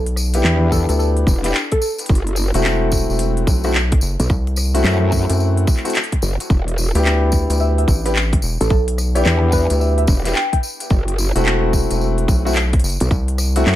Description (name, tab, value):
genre	glitch hop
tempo	109 BPM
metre	4/4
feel	swing 64% on 16ths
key	E minor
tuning	A4 = 440 Hz
part	rubbery square bass	bass	0.0-13.6 s	E1 to F#2	-18 LUFS	equal	none
part	drum and bass drum kit	drums	0.1-13.8 s	handclaps, hi-hat, rim click	-23 LUFS	equal	none
part	tambourine	percussion	0.2-13.8 s	none	-29 LUFS	left 3 dB	none
part	dark baby grand piano	stabs	0.3-13.8 s	A3 to G4	-22 LUFS	left 2 dB	sidechain pumping, dub echo
part	growl bass	bass	0.4-13.8 s	E1 to F#2	-17 LUFS	equal	chorus
part	woody wave-folded pluck	melody	0.7-1.9, 7.6-10.6 s	A4 to G5	-26 LUFS	right 1 dB	wide subtle chorus, dub echo
part	electronic kick drum	drums	0.7-13.2 s	none	-17 LUFS	equal	none
room	little or no reverb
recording	none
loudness	-15 LUFS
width	side -14 dB against mid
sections	0.0-13.8 A section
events	none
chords	0.0 Em7; 2.1 F#m7b5; 6.5 Em7; 10.9 F#m7b5